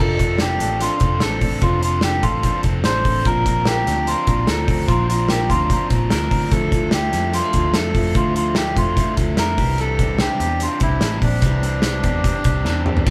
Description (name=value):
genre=jangly indie pop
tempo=147 BPM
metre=4/4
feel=straight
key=F major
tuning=A4 = 440 Hz
part: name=melodica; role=melody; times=0.0-12.8 s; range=D4 to C5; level=-25 LUFS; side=equal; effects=none
part: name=overdriven electric guitar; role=accompaniment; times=0.0-13.1 s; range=Bb2 to Bb4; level=-30 LUFS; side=equal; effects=none
part: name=electric guitar through a small old amp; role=arpeggios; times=0.0-13.1 s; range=E3 to A4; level=-29 LUFS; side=equal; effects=tape echo
part: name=vintage muted picked electric bass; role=bass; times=0.0-13.1 s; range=F1 to F2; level=-25 LUFS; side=equal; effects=none
part: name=loose indie drum kit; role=drums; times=0.2-13.1 s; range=crash cymbal, hi-hat, kick drum, snare drum, toms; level=-23 LUFS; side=equal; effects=none
room=moderate studio reverb, RT60 0.7 s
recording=band playing live in one room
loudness=-19 LUFS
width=mono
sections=0.0-13.1 A section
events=drum fill 12.7-13.1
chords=0.0 F6; 3.3 Bbadd9; 6.5 Dmadd9; 9.6 Cadd9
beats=0.40 0.81 1.22 | 1.62 2.03 2.44 2.85 | 3.25 3.66 4.07 4.48 | 4.89 5.29 5.70 6.11 | 6.52 6.93 7.33 7.74 | 8.15 8.56 8.97 9.38 | 9.79 10.20 10.61 11.02 | 11.43 11.84 12.25 12.66 | 13.07